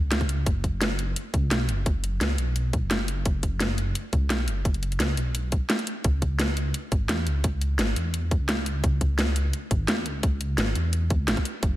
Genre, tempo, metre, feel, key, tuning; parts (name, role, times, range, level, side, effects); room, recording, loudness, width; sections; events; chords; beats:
liquid drum and bass; 172 BPM; 4/4; straight; C# minor; A4 = 440 Hz
dark detuned saw bass; bass; 0.0-11.8 s; F#1 to E2; -26 LUFS; equal; tube saturation
drum and bass drum kit; drums; 0.1-11.7 s; hi-hat, snare drum; -28 LUFS; equal; overdrive
electronic kick drum; drums; 0.2-11.7 s; -24 LUFS; equal; overdrive
light reverb, digital ambience; -23 LUFS; side -15 dB against mid
0.0-11.8 A section
0.12 | 0.47 0.81 1.16 1.51 | 1.86 2.21 2.56 2.91 | 3.26 3.60 3.95 4.30 | 4.65 5.00 5.35 5.70 | 6.05 6.40 6.74 7.09 | 7.44 7.79 8.14 8.49 | 8.84 9.19 9.54 9.88 | 10.23 10.58 10.93 11.28 | 11.63